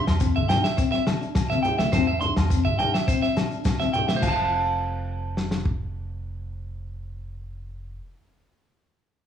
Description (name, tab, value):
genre	highlife guitar band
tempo	104 BPM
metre	4/4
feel	straight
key	F major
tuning	A4 = 441 Hz
part	semi-hollow electric guitar	accompaniment	0.0-4.4 s	F3 to D4	-28 LUFS	left 7 dB	tremolo
part	electric guitar at the edge of break-up	arpeggios	0.0-8.0 s	C5 to C6	-26 LUFS	right 3 dB	spring reverb
part	upright bass	bass	0.1-8.0 s	F1 to G2	-28 LUFS	equal	none
part	warm soul drum kit	drums	0.1-5.8 s	crash cymbal, kick drum, snare drum	-25 LUFS	left 1 dB	none
part	agogo bells	percussion	0.1-4.4 s	none	-37 LUFS	left 5 dB	none
part	shekere	percussion	0.1-4.5 s	none	-40 LUFS	left 3 dB	none
part	congas	percussion	0.4-4.5 s	none	-30 LUFS	left 1 dB	none
room	moderate large studio reverb, RT60 0.9 s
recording	band playing live in one room, small room reverb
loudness	-21 LUFS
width	side -9 dB against mid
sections	0.0-4.2 A section; 4.2-6.5 B section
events	none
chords	0.0 C/E; 4.2 F